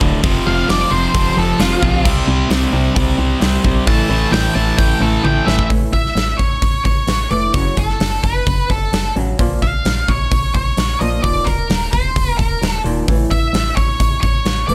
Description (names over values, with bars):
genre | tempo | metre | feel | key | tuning
quiet-loud alternative rock | 130 BPM | 4/4 | straight | unclear | A4 = 439 Hz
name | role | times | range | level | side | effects
cranked stack guitar | riff | 0.0-5.7 s | D2 to C4 | -24 LUFS | equal | overdrive
distorted electric guitar | riff | 0.0-5.7 s | D2 to C4 | -24 LUFS | equal | overdrive
fuzz guitar | riff | 0.0-5.7 s | D2 to C4 | -25 LUFS | equal | distortion
woody FM bass | bass | 0.0-14.7 s | D1 to C2 | -22 LUFS | equal | none
big rock drum kit | drums | 0.0-14.7 s | crash cymbal, hi-hat, kick drum, snare drum, toms | -21 LUFS | equal | none
octave-fuzz lead guitar | melody | 0.5-14.7 s | F4 to A5 | -22 LUFS | equal | distortion
fingerpicked old ladder-braced acoustic guitar | arpeggios | 5.7-14.7 s | Eb2 to Bb3 | -27 LUFS | equal | none
room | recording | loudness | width
little or no reverb | none | -16 LUFS | mono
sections
0.0-5.7 A section; 5.7-14.7 B section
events
lead electric guitar solo 0.0-5.7; drum fill 5.2-5.7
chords
0.2 F5; 2.0 C5; 3.9 A5; 5.7 A; 7.5 F#m; 9.4 Bbm; 11.2 Eb5; 13.1 A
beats
| 0.23 0.69 1.14 1.59 | 2.05 2.50 2.96 3.42 | 3.87 4.33 4.79 5.24 | 5.70 6.16 6.62 7.08 | 7.54 8.00 8.46 8.93 | 9.39 9.85 10.31 10.77 | 11.23 11.69 12.15 12.62 | 13.08 13.54 14.00 14.46